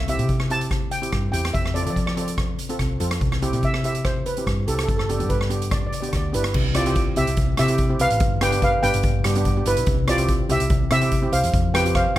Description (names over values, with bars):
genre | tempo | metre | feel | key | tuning
calypso | 144 BPM | 4/4 | straight | C major | A4 = 440 Hz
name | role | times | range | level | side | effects
steel pan | melody | 0.0-12.2 s | E4 to A5 | -24 LUFS | equal | plate reverb
hollow-body short-scale fingered electric bass | bass | 0.0-12.2 s | G1 to F3 | -24 LUFS | equal | none
steel pan | accompaniment | 0.1-12.2 s | B3 to A4 | -28 LUFS | right 1 dB | none
street-band drum kit | drums | 0.1-12.2 s | crash cymbal, hi-hat, kick drum, rim click | -24 LUFS | equal | none
room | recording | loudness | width
light reverb | none | -19 LUFS | side -14 dB against mid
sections
0.0-6.6 A section; 6.6-12.2 B section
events
none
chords
0.0 C; 1.5 F; 3.2 C; 4.9 G; 6.6 Cmaj7; 8.2 G; 9.9 C; 11.5 Fsus2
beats
0.29 0.71 1.13 | 1.54 1.96 2.38 2.80 | 3.21 3.63 4.05 4.47 | 4.88 5.30 5.72 6.13 | 6.55 6.97 7.38 7.80 | 8.21 8.63 9.04 9.46 | 9.88 10.29 10.71 11.12 | 11.54 11.95